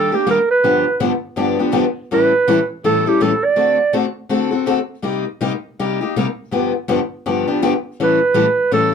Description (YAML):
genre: jazz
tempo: 164 BPM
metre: 4/4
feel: swing 60% on 8ths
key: unclear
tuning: A4 = 440 Hz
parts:
  - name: mellow clarinet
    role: melody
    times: 0.0-3.9, 8.0-8.9 s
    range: G4 to D5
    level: -15 LUFS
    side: right 4 dB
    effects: none
  - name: picked steel-string acoustic guitar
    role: accompaniment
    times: 0.0-8.9 s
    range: G2 to A4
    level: -17 LUFS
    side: left 4 dB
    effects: none
room: light reverb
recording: close, detailed microphones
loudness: -15 LUFS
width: side -6 dB against mid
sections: 0.0-8.9 A section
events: none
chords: 0.0 Ebmaj7; 0.6 G7; 2.1 A7; 3.6 D7; 5.0 Cm7; 6.5 G7; 8.0 A7